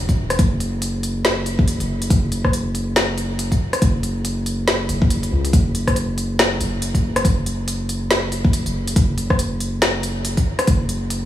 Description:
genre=deep dubstep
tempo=140 BPM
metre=4/4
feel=swing 59% on 16ths, half-time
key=unclear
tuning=A4 = 441 Hz
part: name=saturated sub bass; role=bass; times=0.0-11.3 s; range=E1 to C#2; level=-22 LUFS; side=equal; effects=tube saturation
part: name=deep house drum kit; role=drums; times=0.1-11.2 s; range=hi-hat, rim click, snare drum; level=-22 LUFS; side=left 1 dB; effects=none
part: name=electronic kick drum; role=drums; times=0.1-10.8 s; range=none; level=-17 LUFS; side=equal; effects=none
room=light reverb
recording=studio reverb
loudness=-17 LUFS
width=side -12 dB against mid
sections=0.0-11.3 A section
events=none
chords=none

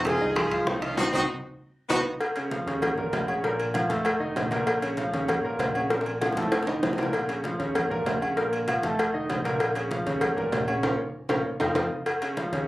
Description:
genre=latin, salsa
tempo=195 BPM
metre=4/4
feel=straight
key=Bb minor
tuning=A4 = 438 Hz
part: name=clear grand piano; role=accompaniment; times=0.0-12.7 s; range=Bb2 to A5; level=-28 LUFS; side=equal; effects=none
part: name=round analog bass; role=bass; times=0.0-12.7 s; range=F1 to F2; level=-36 LUFS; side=equal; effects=none
part: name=congas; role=percussion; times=0.0-12.7 s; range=none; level=-37 LUFS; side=equal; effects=none
part: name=bright horn section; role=melody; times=0.1-2.0 s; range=B3 to Ab4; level=-26 LUFS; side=equal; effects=none
part: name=bongos and cowbell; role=percussion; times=0.1-12.7 s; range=none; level=-30 LUFS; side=left 2 dB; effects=none
part: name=timbales and agogo bells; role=percussion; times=0.1-12.5 s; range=none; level=-31 LUFS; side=right 1 dB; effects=none
room=moderate small room reverb, RT60 0.5 s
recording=recorded on a phone in the room, club reverb, compression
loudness=-24 LUFS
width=side -17 dB against mid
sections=0.0-2.2 A section; 2.2-12.1 B section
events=band accent 1.0-2.2, 10.8-12.1; drum fill 1.6-2.2, 5.9-7.1, 11.4-12.1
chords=0.0 Fm7; 1.0 Cdim; 1.6 B; 2.2 Dbadd9; 2.8 Eb5; 3.4 Bb5; 4.1 F7; 4.7 Bbm; 5.3 Eb5; 5.9 Bb5; 6.5 F7; 7.1 Bbm; 7.8 Eb5; 8.4 Bb5; 9.0 F7; 9.6 Bbm; 10.2 Eb5; 10.8 Bbm; 11.4 F5; 12.1 Dbadd9

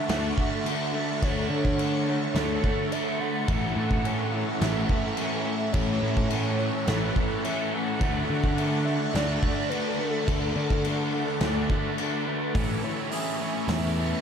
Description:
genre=rock, shoegaze and dream pop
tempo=106 BPM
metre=4/4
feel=straight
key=A major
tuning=A4 = 439 Hz
part: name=pure sine lead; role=melody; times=0.0-14.2 s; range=A4 to F#5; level=-33 LUFS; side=equal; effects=chorus, diffuse ambient delay
part: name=phased string machine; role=sustained chords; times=0.0-14.2 s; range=D4 to D6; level=-35 LUFS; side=equal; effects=ensemble chorus, phaser
part: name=electric guitar through a small old amp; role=arpeggios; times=0.0-14.2 s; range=E3 to G#4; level=-37 LUFS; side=right 1 dB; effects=ensemble chorus, diffuse ambient delay
part: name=raw garage guitar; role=riff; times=0.0-14.2 s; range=A2 to F#4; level=-32 LUFS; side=right 9 dB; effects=overdrive, reverse reverb
part: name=thick fuzz guitar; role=riff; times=0.0-14.2 s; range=A2 to D4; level=-32 LUFS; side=left 9 dB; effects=distortion, wide subtle chorus
part: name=fuzz picked electric bass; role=bass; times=0.1-14.1 s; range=A1 to D3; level=-28 LUFS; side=equal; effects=overdrive
part: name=loose indie drum kit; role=drums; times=0.1-13.8 s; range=crash cymbal, hi-hat, kick drum, snare drum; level=-30 LUFS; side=equal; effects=none
room=moderate huge ambient reverb, RT60 6.9 s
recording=dreamy mix soaked in reverb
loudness=-24 LUFS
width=side -7 dB against mid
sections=0.0-12.5 A section; 12.5-14.2 B section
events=none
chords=0.0 Dmaj7; 3.5 A6; 8.0 Dmaj7; 12.5 Amaj7

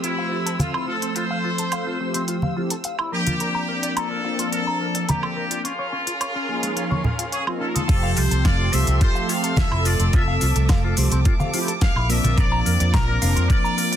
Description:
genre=nu-disco, nu disco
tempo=107 BPM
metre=4/4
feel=straight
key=F major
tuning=A4 = 440 Hz
part: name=muted trumpet section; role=melody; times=0.0-14.0 s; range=E4 to F5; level=-27 LUFS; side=left 1 dB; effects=analog delay
part: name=mellow synth brass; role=accompaniment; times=0.0-14.0 s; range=F3 to A4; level=-26 LUFS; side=right 1 dB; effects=chorus
part: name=rich studio violin section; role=sustained chords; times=0.0-14.0 s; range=Bb3 to E6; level=-33 LUFS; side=equal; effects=vintage 12-bit sampler grit, sidechain pumping
part: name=electric guitar with an envelope filter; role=riff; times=0.0-14.0 s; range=Ab3 to Bb5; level=-30 LUFS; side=left 2 dB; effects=lush chorus, low-pass filter
part: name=pop drum kit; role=drums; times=0.0-14.0 s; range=crash cymbal, hi-hat, shaker, snare drum, woodblock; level=-27 LUFS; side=right 1 dB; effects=none
part: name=congas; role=percussion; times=0.6-12.3 s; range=none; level=-24 LUFS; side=equal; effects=none
part: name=fingered electric bass with an envelope filter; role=bass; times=7.9-13.5 s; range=F1 to F2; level=-20 LUFS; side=equal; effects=none
part: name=electronic kick drum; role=drums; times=7.9-13.6 s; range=none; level=-19 LUFS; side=equal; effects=none
room=little or no reverb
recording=dense, heavily limited modern master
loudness=-19 LUFS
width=side -10 dB against mid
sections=0.0-7.9 A section; 7.9-14.0 B section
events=drop 7.9-14.0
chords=0.0 Fmaj7; 3.1 Bbmaj7; 5.6 Db6; 7.9 Fmaj7; 12.1 Bb

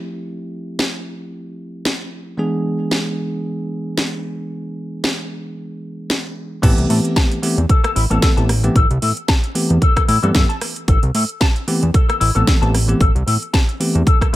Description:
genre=nu-disco, nu disco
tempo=113 BPM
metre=4/4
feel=swing 56% on 16ths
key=A minor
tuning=A4 = 440 Hz
part: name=bell-like tine electric piano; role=accompaniment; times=0.0-14.0 s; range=E3 to A4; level=-22 LUFS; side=equal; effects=sidechain pumping, digital delay
part: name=house drum kit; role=drums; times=0.8-14.4 s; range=crash cymbal, hi-hat, rim click, snare drum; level=-22 LUFS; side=right 1 dB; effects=none
part: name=electric guitar with an envelope filter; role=riff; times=6.6-14.4 s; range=E4 to A5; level=-22 LUFS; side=left 5 dB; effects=analog chorus, digital delay
part: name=fat analog bass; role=bass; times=6.6-14.4 s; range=A1 to A2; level=-17 LUFS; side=equal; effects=none
part: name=electronic kick drum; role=drums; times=6.6-14.3 s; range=none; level=-14 LUFS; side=equal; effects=none
room=digital ambience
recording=none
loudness=-15 LUFS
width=side -15 dB against mid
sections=0.0-6.6 A section; 6.6-14.4 B section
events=drop 6.6-14.4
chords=0.0 Fmaj9; 2.4 E7; 6.6 Am9

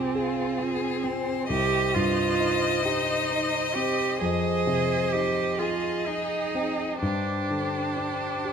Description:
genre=classical, slow romantic movement for piano quartet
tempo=42-46 BPM (dotted quarters)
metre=12/8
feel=rubato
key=C minor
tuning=A4 = 440 Hz
part: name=clear violin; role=melody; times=0.0-8.5 s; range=F4 to Eb5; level=-30 LUFS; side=left 7 dB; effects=none
part: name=rich cello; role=second line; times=0.0-8.5 s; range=C4 to Ab4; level=-27 LUFS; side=right 8 dB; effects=none
part: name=rich violin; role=second line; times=0.0-8.5 s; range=Ab4 to Eb5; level=-34 LUFS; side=left 3 dB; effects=none
part: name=warm concert grand piano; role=accompaniment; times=0.0-8.5 s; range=C2 to Ab4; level=-30 LUFS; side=left 2 dB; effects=none
room=moderate scoring stage reverb, RT60 1.8 s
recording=close, detailed microphones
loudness=-24 LUFS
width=side -7 dB against mid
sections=0.0-8.5 A section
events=none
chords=0.0 Fm/C; 1.5 Cm; 4.2 Fm7; 7.0 Gsus4

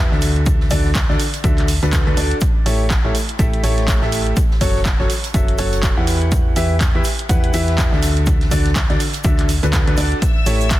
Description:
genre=piano house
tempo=123 BPM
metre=4/4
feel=swing 58% on 16ths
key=unclear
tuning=A4 = 441 Hz
part: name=clear upright piano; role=riff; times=0.0-10.6 s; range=D3 to F#5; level=-21 LUFS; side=left 1 dB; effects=sidechain pumping
part: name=solid FM bass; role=bass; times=0.0-10.8 s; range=F#1 to E2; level=-20 LUFS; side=equal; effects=sidechain pumping
part: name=open jazz drum kit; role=drums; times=0.1-10.8 s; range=hi-hat, shaker, snare drum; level=-33 LUFS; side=equal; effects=sidechain pumping on hats, high-pass filter on hats, high-pass filter on snare, sidechain pumping on perc, high-pass filter on perc, high-pass filter on room
part: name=punchy analog drum machine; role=drums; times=0.2-10.8 s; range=handclaps, hi-hat, shaker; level=-25 LUFS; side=right 2 dB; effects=none
part: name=electronic kick drum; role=drums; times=0.5-10.8 s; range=none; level=-18 LUFS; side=equal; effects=none
part: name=rich studio string section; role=sustained chords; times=10.2-10.8 s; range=E5 to E6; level=-25 LUFS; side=left 4 dB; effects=sidechain pumping
room=small room reverb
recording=dense, heavily limited modern master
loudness=-14 LUFS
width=side -15 dB against mid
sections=0.0-10.8 A section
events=none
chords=0.2 D; 2.4 A7; 4.4 F#m; 6.1 Em; 8.0 D; 10.2 A7

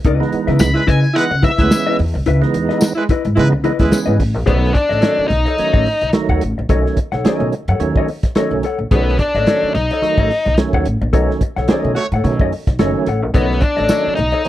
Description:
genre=funk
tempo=108 BPM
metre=4/4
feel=swing 56% on 16ths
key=B mixolydian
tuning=A4 = 439 Hz
part: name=warm soul drum kit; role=drums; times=0.0-14.5 s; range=hi-hat, kick drum, snare drum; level=-16 LUFS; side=equal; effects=none
part: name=mellow electric guitar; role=accompaniment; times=0.1-14.5 s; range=E4 to F#5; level=-22 LUFS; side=left 7 dB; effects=none
part: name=upright bass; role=bass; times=0.1-14.5 s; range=F#1 to C#3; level=-18 LUFS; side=equal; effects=none
part: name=percussive tonewheel organ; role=stabs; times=0.2-14.5 s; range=D#3 to D#4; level=-20 LUFS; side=right 5 dB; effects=overdrive, chorus vibrato, slow rotary speaker
part: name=octave-fuzz lead guitar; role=melody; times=0.6-14.5 s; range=B3 to B5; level=-18 LUFS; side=left 2 dB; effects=distortion
part: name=tambourine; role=percussion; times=0.6-4.1, 13.9-14.0 s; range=none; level=-30 LUFS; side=left 2 dB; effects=none
part: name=warm horn section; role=second line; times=0.7-4.0, 12.0-12.1 s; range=G#3 to C#5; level=-19 LUFS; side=right 2 dB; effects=none
room=small room reverb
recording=dry, close 1970s-style studio recording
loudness=-13 LUFS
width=side -14 dB against mid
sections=0.0-4.5 A section; 4.5-14.5 B section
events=band accent 11.1-13.3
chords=0.0 C#m9; 4.5 B9

